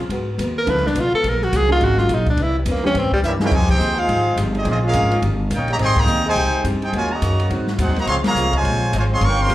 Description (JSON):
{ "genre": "jazz, big band swing", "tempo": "211 BPM", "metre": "4/4", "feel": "swing 61% on 8ths", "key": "F minor", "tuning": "A4 = 445 Hz", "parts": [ { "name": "fingerpicked steel-string acoustic guitar", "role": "accompaniment", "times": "0.1-9.5 s", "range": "G2 to Bb4", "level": "-28 LUFS", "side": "left 2 dB", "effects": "plate reverb, slapback echo" }, { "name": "upright bass", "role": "bass", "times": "0.1-9.5 s", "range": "G1 to Ab2", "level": "-21 LUFS", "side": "equal", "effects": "none" }, { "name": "open jazz drum kit", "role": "drums", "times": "0.1-9.5 s", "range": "crash cymbal, hi-hat, kick drum, ride cymbal, snare drum", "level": "-26 LUFS", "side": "equal", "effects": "none" }, { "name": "clear tenor saxophone", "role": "melody", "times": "0.6-3.2 s", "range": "G3 to Cb5", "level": "-19 LUFS", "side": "equal", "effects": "plate reverb, slapback echo" }, { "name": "warm baby grand piano", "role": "accompaniment", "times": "0.7-3.5 s", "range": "E3 to A4", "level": "-26 LUFS", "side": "right 2 dB", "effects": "plate reverb, slapback echo" }, { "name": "clear trumpet section", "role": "melody", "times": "3.2-9.5 s", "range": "C4 to Db6", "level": "-20 LUFS", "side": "equal", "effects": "plate reverb" }, { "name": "bright trombone section", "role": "second line", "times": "3.2-9.5 s", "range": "C3 to G4", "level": "-26 LUFS", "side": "right 1 dB", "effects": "plate reverb, slapback echo" }, { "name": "mellow saxophone section", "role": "sustained chords", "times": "4.4-9.5 s", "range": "Db3 to Ab4", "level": "-30 LUFS", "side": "equal", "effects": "plate reverb" } ], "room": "light reverb", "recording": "live gig heard through the venue's PA, club reverb", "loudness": "-16 LUFS", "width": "side -15 dB against mid", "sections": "0.0-3.5 A section; 3.5-9.5 B section", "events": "tenor saxophone solo 0.0-3.5; drum fill 3.2; band accent 3.7, 5.9, 8.2", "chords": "0.1 Abm9; 0.7 Db7alt; 1.2 Gb69; 2.4 C7b9; 3.5 Fm9; 4.7 Bbm7; 5.2 Eb7; 5.8 Abmaj7; 6.9 Ebm7; 7.5 Ab7; 8.1 Dbmaj7", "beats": "| 0.10 0.38 0.67 0.95 | 1.24 1.52 1.81 2.09 | 2.38 2.66 2.94 3.23 | 3.51 3.80 4.08 4.37 | 4.65 4.94 5.22 5.50 | 5.79 6.07 6.36 6.64 | 6.93 7.21 7.50 7.78 | 8.07 8.35 8.63 8.92 | 9.20 9.49" }